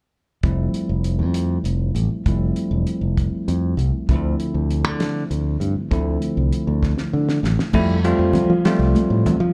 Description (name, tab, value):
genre	electric jazz fusion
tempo	66 BPM (dotted quarters)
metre	6/8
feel	straight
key	F major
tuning	A4 = 440 Hz
part	bell-like tine electric piano	accompaniment	0.4-9.4 s	D3 to F4	-25 LUFS	equal	none
part	modern bright fingered electric bass	bass	0.4-9.5 s	E1 to F3	-22 LUFS	equal	none
part	damped 70s drum kit	drums	0.4-9.4 s	crash cymbal, hi-hat, kick drum, snare drum	-26 LUFS	equal	none
part	congas	percussion	7.7-9.4 s	none	-26 LUFS	equal	none
room	little or no reverb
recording	live gig heard through the venue's PA, club ambience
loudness	-20 LUFS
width	mono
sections	0.4-7.7 A section; 7.7-9.5 B section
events	drum fill 6.8-7.7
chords	0.4 Fmaj9; 4.1 Dm9; 7.7 Fmaj9